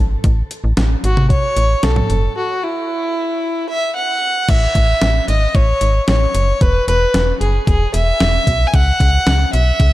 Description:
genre	synth-pop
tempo	113 BPM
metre	4/4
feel	straight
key	unclear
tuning	A4 = 439 Hz
part	slap-like FM bass	bass	0.0-9.9 s	E1 to C#2	-16 LUFS	equal	none
part	clean 12-bit digital drum machine	drums	0.2-9.9 s	crash cymbal, hi-hat, kick drum, snare drum, toms	-17 LUFS	equal	overdrive
part	dark fiddle	melody	1.0-9.9 s	E4 to G#5	-18 LUFS	equal	shimmer reverb, tape echo
room	light reverb, digital ambience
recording	none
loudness	-13 LUFS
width	side -16 dB against mid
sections	0.0-4.5 A section; 4.5-9.9 B section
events	break 2.4-4.5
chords	0.2 A; 2.4 N.C.; 4.5 A; 6.6 E5; 8.7 C#m7

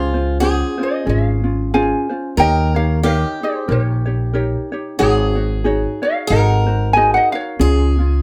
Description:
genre	Hawaiian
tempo	92 BPM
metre	4/4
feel	swing 57% on 8ths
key	Db major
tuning	A4 = 442 Hz
part	ukulele	melody	0.0-8.2 s	Ab4 to Ab5	-22 LUFS	equal	slapback echo
part	picked swing-style acoustic guitar	second line	0.0-8.2 s	F4 to Bb4	-26 LUFS	equal	none
part	ukulele	accompaniment	0.0-8.2 s	Db4 to Db5	-23 LUFS	equal	none
part	upright bass	bass	0.0-8.2 s	Ab1 to Eb2	-20 LUFS	equal	none
room	moderate small room reverb, RT60 0.6 s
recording	none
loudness	-17 LUFS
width	mono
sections	0.0-8.2 A section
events	none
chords	0.0 Dbmaj7; 2.4 Eb7; 5.0 Ab7sus4; 6.3 Ab7; 7.6 Db

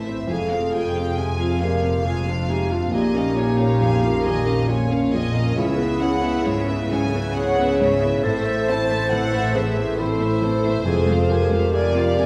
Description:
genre	cinematic, emotional film score for orchestra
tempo	68 BPM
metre	3/4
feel	rubato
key	unclear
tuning	A4 = 440 Hz
part	warm chamber violin section	melody	0.0-12.3 s	C5 to Ab5	-36 LUFS	equal	none
part	warm studio violin section	second line	0.0-12.3 s	C5 to A5	-31 LUFS	equal	none
part	dark symphonic viola section	accompaniment	0.0-12.3 s	Ab3 to C5	-32 LUFS	equal	none
part	felt-muted upright piano	accompaniment	0.0-12.3 s	A#1 to F4	-29 LUFS	equal	none
part	concert harp	arpeggios	0.0-12.3 s	F2 to E5	-32 LUFS	equal	none
part	dark symphonic double bass section	bass	0.0-12.3 s	F1 to C#2	-29 LUFS	equal	none
part	rich symphonic cello section	bass	0.0-12.3 s	F2 to C#3	-29 LUFS	equal	none
part	wooden-headed alto flute	melody	0.3-12.3 s	F4 to C#5	-28 LUFS	equal	none
part	mellow clarinet	second line	0.3-12.3 s	C#4 to A4	-30 LUFS	equal	none
room	wet stone room reverb, RT60 1.0 s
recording	heard from further back in the room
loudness	-21 LUFS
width	mono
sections	0.0-12.3 A section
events	none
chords	0.3 Fm; 2.9 A#m7; 5.6 C#m7; 8.2 Am; 10.9 Fm

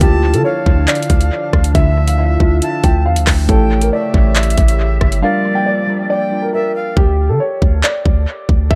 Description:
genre	hip hop, drill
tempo	138 BPM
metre	4/4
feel	half-time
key	D harmonic minor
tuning	A4 = 439 Hz
part	dark grand piano	melody	0.0-8.8 s	G4 to G5	-22 LUFS	equal	low-pass filter, dub echo
part	bright reedy jazz flute	second line	0.0-7.0 s	D5 to A5	-26 LUFS	equal	dub echo
part	muted felt-like synth keys	accompaniment	0.0-7.0 s	D3 to C#5	-22 LUFS	equal	chorus, phaser, low-pass filter, dub echo
part	warbly tape-like pad	sustained chords	0.0-7.0 s	C#3 to G4	-31 LUFS	equal	chorus, built-in reverb
part	long sustained 808-style bass	bass	0.0-8.8 s	G1 to D3	-17 LUFS	equal	none
part	drill drum kit	drums	0.0-8.8 s	handclaps, hi-hat, kick drum, rim click	-17 LUFS	equal	none
room	little or no reverb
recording	echo-heavy mix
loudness	-14 LUFS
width	mono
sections	0.0-7.0 A section; 7.0-8.8 B section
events	break 5.2-7.0; hi-hats muted 7.0-8.8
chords	0.0 Dmadd9; 3.5 A7; 5.2 Gm7; 7.0 N.C.

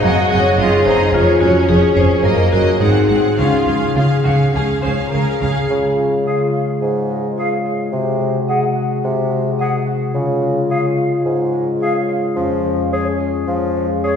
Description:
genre	cinematic, playful, whimsical film cue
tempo	108 BPM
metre	4/4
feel	straight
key	Db major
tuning	A4 = 440 Hz
part	marimba with hard mallets	melody	0.0-5.1 s	Db4 to Eb5	-19 LUFS	left 3 dB	none
part	rich chamber violin section	melody	0.0-5.7 s	Db5 to Gb5	-23 LUFS	left 1 dB	none
part	warm chamber violin section	second line	0.0-5.6 s	Bb3 to C5	-21 LUFS	equal	none
part	rich chamber viola section	accompaniment	0.0-5.7 s	C4 to Bb4	-22 LUFS	right 3 dB	none
part	concert harp	arpeggios	0.0-14.2 s	F2 to F5	-20 LUFS	left 2 dB	none
part	rich chamber double bass section	bass	0.0-5.5 s	F1 to Db2	-22 LUFS	right 2 dB	none
part	warm studio cello section	bass	0.0-5.5 s	F2 to Db3	-19 LUFS	right 2 dB	none
part	warm bassoon	accompaniment	5.7-13.9 s	Ab2 to F3	-22 LUFS	right 1 dB	none
part	warm French horn section	sustained chords	5.7-14.2 s	Ab3 to Gb4	-21 LUFS	left 2 dB	none
part	bright clarinet	second line	6.3-14.2 s	Ab4	-28 LUFS	left 1 dB	none
part	mellow flute section	second line	6.3-14.1 s	Db5 to Gb5	-25 LUFS	right 1 dB	none
room	wet concert hall reverb, RT60 2.2 s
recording	heard from further back in the room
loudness	-14 LUFS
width	side -7 dB against mid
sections	0.0-5.7 A section; 5.7-14.2 B section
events	none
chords	0.0 Ab7/Gb; 1.1 Db/F; 2.2 Ebm7/Gb; 2.8 Ab7; 3.4 Db; 7.9 Ab7/C; 10.1 Db; 12.4 Db/F

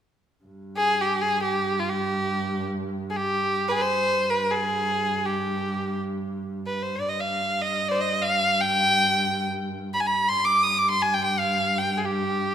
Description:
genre	arabic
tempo	free time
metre	none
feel	none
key	G maqam hijaz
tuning	A4 = 437 Hz
part	warm double bass	drone	0.4-12.5 s	G2	-31 LUFS	right 2 dB	none
part	rich violin	melody	0.8-12.5 s	F4 to Eb6	-22 LUFS	equal	none
room	moderate scoring stage reverb, RT60 1.9 s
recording	minimal, uncompressed stereo recording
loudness	-22 LUFS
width	side -9 dB against mid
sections	0.5-12.5 A section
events	none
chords	none

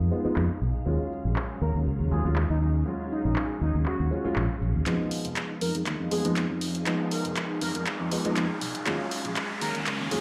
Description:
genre	filtered disco house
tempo	120 BPM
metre	4/4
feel	swing 54% on 16ths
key	unclear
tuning	A4 = 438 Hz
part	warm concert grand piano	accompaniment	0.0-10.2 s	F3 to F4	-34 LUFS	equal	phaser, low-pass filter
part	phased string machine	sustained chords	0.0-10.2 s	Gb3 to F5	-38 LUFS	equal	ensemble chorus, phaser, low-pass filter
part	fingered electric bass	bass	0.0-10.2 s	F1 to F2	-30 LUFS	equal	high-pass filter, low-pass filter
part	house drum kit	drums	0.0-10.2 s	handclaps, hi-hat, shaker	-36 LUFS	equal	low-pass filter on perc, low-pass filter on snare, low-pass filter on hats
part	analog synth brass	melody	1.6-10.2 s	Eb4 to Bb4	-36 LUFS	equal	chorus, low-pass filter, digital delay
part	riser	sound effects	6.5-10.2 s	none	-40 LUFS	equal	none
room	light reverb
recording	played on a big sound system in a bare room, large studio reverb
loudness	-28 LUFS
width	mono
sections	0.0-4.9 A section; 4.9-10.2 B section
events	filter sweep 0.0-4.9, 4.9-10.2; build-up 4.9-10.2; drum fill 4.9-10.2; riser 6.5-10.2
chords	0.0 Fm7b5; 0.9 Ebm11; 4.9 Fm7b5; 8.9 Ebm11

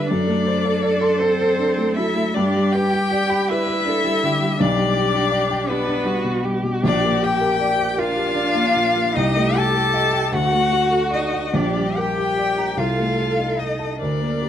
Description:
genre	classical, slow romantic movement for piano quartet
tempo	47-56 BPM (dotted quarters)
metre	6/8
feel	rubato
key	G major, G minor from 6.8 s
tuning	A4 = 440 Hz
part	rich violin	melody	0.0-14.5 s	B4 to A5	-22 LUFS	left 7 dB	none
part	clear cello	second line	0.0-14.5 s	B3 to A4	-26 LUFS	right 4 dB	none
part	dark baby grand piano	accompaniment	0.0-14.5 s	Bb1 to C6	-22 LUFS	equal	none
part	rich viola	accompaniment	0.0-14.5 s	D4 to B4	-24 LUFS	right 2 dB	none
room	moderate recital hall reverb, RT60 1.6 s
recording	close, detailed microphones, vinyl crackle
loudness	-17 LUFS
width	side -10 dB against mid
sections	0.0-14.5 A section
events	none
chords	0.1 D7/F#; 2.4 G; 4.6 G/B; 6.8 Gm/Bb; 9.2 Am7b5/C; 10.3 D; 11.5 Gm/Bb; 12.8 Adim/C

